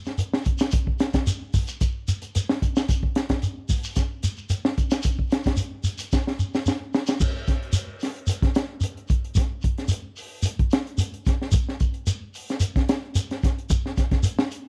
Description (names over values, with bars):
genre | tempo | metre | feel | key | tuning
afrobeat | 111 BPM | 4/4 | straight | none | none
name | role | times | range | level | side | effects
crunchy breakbeat drum kit | drums | 0.1-14.6 s | crash cymbal, hi-hat, kick drum, snare drum | -25 LUFS | equal | none
shekere | percussion | 0.1-14.6 s | none | -28 LUFS | equal | none
room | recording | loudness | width
studio ambience | dry, close 1970s-style studio recording | -25 LUFS | mono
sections
0.0-7.2 A section; 7.2-14.7 B section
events
drum fill 6.1-7.2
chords
none